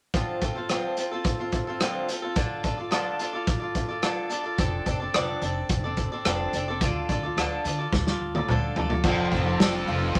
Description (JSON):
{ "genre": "folk rock and heartland rock", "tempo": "108 BPM", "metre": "4/4", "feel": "straight", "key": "unclear", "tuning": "A4 = 441 Hz", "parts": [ { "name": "picked swing-style acoustic guitar", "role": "accompaniment", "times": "0.1-10.2 s", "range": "D3 to D5", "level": "-31 LUFS", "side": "equal", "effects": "none" }, { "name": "loose indie drum kit", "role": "drums", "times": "0.1-10.2 s", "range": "crash cymbal, hi-hat, kick drum, rim click, snare drum, toms", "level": "-29 LUFS", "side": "equal", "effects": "none" }, { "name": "upright bass", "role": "bass", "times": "4.6-10.2 s", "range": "F1 to D3", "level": "-33 LUFS", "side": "equal", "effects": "none" }, { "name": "biting overdriven guitar", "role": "riff", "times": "9.0-10.2 s", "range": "F3 to A4", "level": "-29 LUFS", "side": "equal", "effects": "none" } ], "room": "moderate studio reverb, RT60 0.6 s", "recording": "none", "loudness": "-27 LUFS", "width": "mono", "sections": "0.1-9.0 A section; 9.0-10.2 B section", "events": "drum fill 7.9-9.0", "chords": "0.1 F6; 2.4 Dm; 4.6 F6; 6.8 Dm; 9.0 F6" }